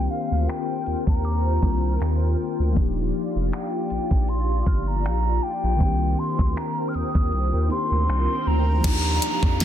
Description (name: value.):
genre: contemporary R&B.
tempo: 79 BPM.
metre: 4/4.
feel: swing 54% on 16ths.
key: unclear.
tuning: A4 = 440 Hz.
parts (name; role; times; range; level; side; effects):
breathy concert flute; melody; 0.0-9.6 s; F5 to F6; -29 LUFS; right 1 dB; ping-pong delay.
muted felt-like synth keys; accompaniment; 0.0-9.6 s; Eb3 to G4; -29 LUFS; left 3 dB; chorus.
hollow soft pad; sustained chords; 0.0-9.6 s; F4 to G5; -31 LUFS; left 1 dB; ensemble chorus, sidechain pumping.
saturated sub bass; bass; 0.0-9.6 s; Eb1 to F2; -23 LUFS; equal; none.
smooth R&B drum kit; drums; 0.5-9.6 s; crash cymbal, finger snaps, hi-hat, kick drum, snare drum; -23 LUFS; equal; soft clipping on snare.
mallet-like synth pluck; texture; 1.2-6.1 s; D6 to F6; -46 LUFS; right 2 dB; none.
swell and downlifter; sound effects; 7.8-9.6 s; none; -32 LUFS; right 1 dB; none.
room: digital ambience.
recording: dense, heavily limited modern master, low-pass filter.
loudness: -20 LUFS.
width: side -10 dB against mid.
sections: 0.0-8.8 A section.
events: filter sweep 0.0-8.8; kick muted 7.3-8.8; swell 7.8-8.8.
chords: 0.0 Cm7; 2.8 Ebmaj9; 5.8 Cm7; 8.8 Ebmaj9.